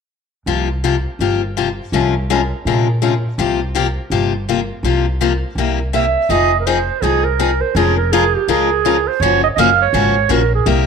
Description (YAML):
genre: acoustic string swing (jazz manouche)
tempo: 165 BPM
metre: 4/4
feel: swing 60% on 8ths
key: unclear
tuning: A4 = 440 Hz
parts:
  - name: picked steel-string acoustic guitar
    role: accompaniment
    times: 0.5-10.9 s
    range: C3 to Bb4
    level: -17 LUFS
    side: left 8 dB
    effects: none
  - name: upright bass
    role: bass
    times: 0.5-10.9 s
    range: F1 to Bb2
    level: -19 LUFS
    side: right 1 dB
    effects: none
  - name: mellow clarinet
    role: melody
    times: 5.9-10.9 s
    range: G4 to F5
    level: -15 LUFS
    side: right 11 dB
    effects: none
room: wet spring reverb, RT60 1.3 s, studio reverb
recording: 1960s-style stereo with parts hard left and right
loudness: -14 LUFS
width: side -6 dB against mid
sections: 0.5-6.3 A section; 6.3-10.9 B section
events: none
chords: 0.5 C7sus4; 1.9 Bbm9/C; 3.4 C7sus4; 5.6 C7; 6.3 Fm7; 7.8 Db6/F; 9.2 Gbmaj7